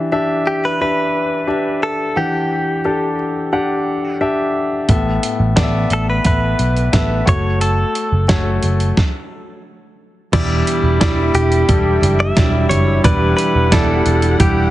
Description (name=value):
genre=piano-driven pop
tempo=88 BPM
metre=4/4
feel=straight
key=E dorian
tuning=A4 = 438 Hz
part: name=clear concert grand piano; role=accompaniment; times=0.0-14.7 s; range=A2 to F#5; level=-18 LUFS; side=left 2 dB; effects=none
part: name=direct-recorded clean electric guitar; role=melody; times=0.5-14.7 s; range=G4 to E5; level=-20 LUFS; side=equal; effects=none
part: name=vintage muted picked electric bass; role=bass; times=4.9-14.7 s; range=E1 to B1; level=-17 LUFS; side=right 1 dB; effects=none
part: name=dusty soul sampler-style drum kit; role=drums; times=4.9-14.6 s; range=crash cymbal, hi-hat, kick drum, snare drum, toms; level=-17 LUFS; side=right 1 dB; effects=none
part: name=dark studio string section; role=sustained chords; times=10.3-14.7 s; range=G4 to F#5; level=-28 LUFS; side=left 1 dB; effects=none
part: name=fingerpicked plugged-in steel-string acoustic guitar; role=riff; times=10.3-14.7 s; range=E2 to E4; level=-22 LUFS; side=right 5 dB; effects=none
room=light reverb, digital ambience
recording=heavily compressed radio sound, multiband compression, nothing above 10.8 kHz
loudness=-14 LUFS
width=side -15 dB against mid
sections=0.0-10.3 A section; 10.3-14.7 B section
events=stop 9.0-10.3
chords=0.0 Em7; 4.9 Asus2; 7.3 F#m; 10.3 Em7